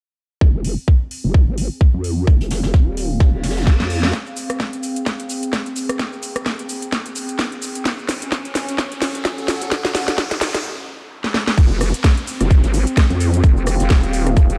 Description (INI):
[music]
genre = bass house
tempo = 129 BPM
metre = 4/4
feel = swing 57% on 16ths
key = F phrygian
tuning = A4 = 439 Hz
[part]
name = vowel-sweep wobble bass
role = bass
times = 0.4-4.1, 11.6-14.6 s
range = Eb1 to F2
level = -21 LUFS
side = equal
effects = chorus, overdrive, sidechain pumping
[part]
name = electronic kick drum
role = drums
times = 0.4-14.5 s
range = none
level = -15 LUFS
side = equal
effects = high-pass filter on kick, studio reverb
[part]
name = warbly tape-like pad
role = texture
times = 0.4-14.6 s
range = C4 to Gb5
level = -30 LUFS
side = equal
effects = chorus, built-in reverb, sidechain pumping
[part]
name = garage drum kit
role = drums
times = 0.6-14.6 s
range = crash cymbal, hi-hat, rim click, shaker, snare drum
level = -25 LUFS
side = equal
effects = studio reverb
[part]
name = jazz brush drum kit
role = drums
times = 2.3-4.0, 11.6-14.5 s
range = hi-hat, snare drum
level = -38 LUFS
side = equal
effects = none
[part]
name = reverse cymbal, riser, noise sweep and downlifter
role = sound effects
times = 3.4-14.6 s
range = none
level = -37 LUFS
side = equal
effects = none
[sound]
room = light reverb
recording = dark, warm production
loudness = -18 LUFS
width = mono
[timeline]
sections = 0.4-4.1 A section; 4.1-11.6 B section; 11.6-14.6 C section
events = reverse cymbal 3.4-4.1; drum fill 3.7-4.1, 4.1-10.6, 11.2-11.6; build-up 4.1-11.6; riser 4.1-10.6; noise sweep 9.7-11.6; stop 10.6-11.6; drop 11.6-14.6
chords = 0.4 Fm; 7.9 Gbm; 11.6 Fm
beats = | 0.41 0.88 1.34 1.81 | 2.27 2.74 3.20 3.67 | 4.13 4.60 5.06 5.53 | 5.99 6.46 6.92 7.39 | 7.86 8.32 8.79 9.25 | 9.71 10.18 10.65 11.11 | 11.58 12.04 12.51 12.97 | 13.44 13.90 14.37